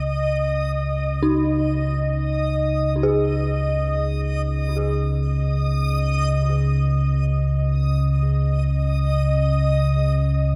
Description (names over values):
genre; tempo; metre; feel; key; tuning
dark ambient drone; free time; none; none; unclear; A4 = 436 Hz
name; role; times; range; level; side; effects
deep rumbling drone; drone; 0.0-10.6 s; C#2 to C#3; -22 LUFS; equal; built-in reverb, lush chorus
backwards swelling texture; texture; 0.0-10.6 s; D#5; -29 LUFS; equal; built-in reverb
dark detuned synth bell; arpeggios; 1.2-10.6 s; D#4 to G#4; -28 LUFS; equal; chorus, phaser, analog delay
room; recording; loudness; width
wet spring reverb, RT60 2.9 s; echo-heavy mix; -21 LUFS; mono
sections
0.0-10.6 A section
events
none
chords
0.0 C#sus2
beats
free time